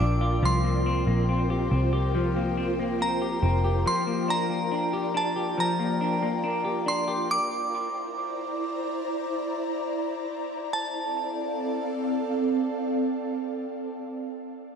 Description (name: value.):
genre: dream pop.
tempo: 70 BPM.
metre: 4/4.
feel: straight.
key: D minor.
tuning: A4 = 440 Hz.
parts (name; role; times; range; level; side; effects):
glassy synth bell; melody; 0.0-14.0 s; A5 to D6; -30 LUFS; right 2 dB; chorus, dub echo.
ethereal airy pad; sustained chords; 0.0-14.0 s; C4 to Bb5; -29 LUFS; right 1 dB; ensemble chorus, built-in reverb.
semi-hollow electric guitar; arpeggios; 0.0-7.9 s; F3 to G4; -29 LUFS; left 4 dB; lush chorus, dub echo.
vintage muted picked electric bass; bass; 0.0-3.8 s; F1 to C2; -25 LUFS; equal; none.
room: moderate spring reverb, RT60 2.5 s.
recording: echo-heavy mix.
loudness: -24 LUFS.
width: side -7 dB against mid.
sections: 0.0-10.7 A section; 10.7-14.1 B section.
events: none.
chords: 0.4 C7sus4; 7.3 C9; 10.7 Dm7.